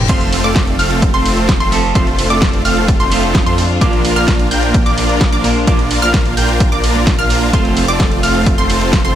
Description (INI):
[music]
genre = EDM, festival progressive house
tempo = 129 BPM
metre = 4/4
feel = straight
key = F major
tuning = A4 = 440 Hz
[part]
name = bright symphonic string section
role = sustained chords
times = 0.0-9.2 s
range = A3 to F4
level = -22 LUFS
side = left 2 dB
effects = sidechain pumping
[part]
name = wide detuned saw bass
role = bass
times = 0.0-9.2 s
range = F1 to F2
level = -19 LUFS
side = equal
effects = chorus, sidechain pumping
[part]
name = clean electric guitar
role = accompaniment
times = 0.1-9.1 s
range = Bb2 to Bb4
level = -21 LUFS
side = right 4 dB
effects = sidechain pumping, tape echo
[part]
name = wide unison pluck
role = arpeggios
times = 0.1-9.2 s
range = C6 to G6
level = -20 LUFS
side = equal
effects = sidechain pumping, tape echo
[part]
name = supersaw chords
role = riff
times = 0.1-9.2 s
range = A3 to G5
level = -18 LUFS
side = right 1 dB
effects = sidechain pumping, tape echo
[part]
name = electronic kick drum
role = drums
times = 0.1-9.0 s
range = none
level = -15 LUFS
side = equal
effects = overdrive, small room reverb
[part]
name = pop drum kit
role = drums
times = 0.1-9.1 s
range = crash cymbal, hi-hat, ride cymbal, snare drum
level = -20 LUFS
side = right 1 dB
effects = small room reverb
[sound]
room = little or no reverb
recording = none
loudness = -11 LUFS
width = side -11 dB against mid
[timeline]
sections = 0.0-9.2 A section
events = none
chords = 0.1 F; 3.8 Bb; 7.5 F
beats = | 0.09 0.56 1.02 1.49 | 1.95 2.42 2.88 3.35 | 3.81 4.28 4.74 5.21 | 5.67 6.14 6.60 7.07 | 7.53 8.00 8.46 8.93